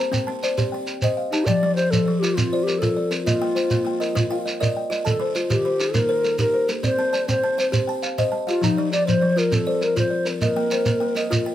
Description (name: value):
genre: southern african traditional, mbira-style interlocking cycle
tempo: 134 BPM (dotted quarters)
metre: 12/8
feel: straight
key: F mixolydian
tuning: A4 = 440 Hz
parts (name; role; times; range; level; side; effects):
- buzzing kalimba; arpeggios; 0.0-11.5 s; Eb3 to A5; -25 LUFS; left 4 dB; none
- buzzing kalimba; arpeggios; 0.0-11.5 s; Eb3 to Bb5; -28 LUFS; right 4 dB; none
- shekere; percussion; 0.1-11.5 s; none; -24 LUFS; right 2 dB; none
- mellow hollow low Native American-style wooden flute; melody; 1.3-11.5 s; Eb4 to D5; -22 LUFS; left 1 dB; plate reverb
room: light reverb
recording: none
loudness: -19 LUFS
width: side -12 dB against mid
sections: 0.0-1.5 A section; 1.5-11.5 B section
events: none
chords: 0.0 Cm; 1.5 F; 3.3 Bb; 5.1 Eb; 6.8 Cm; 8.6 F; 10.4 Bb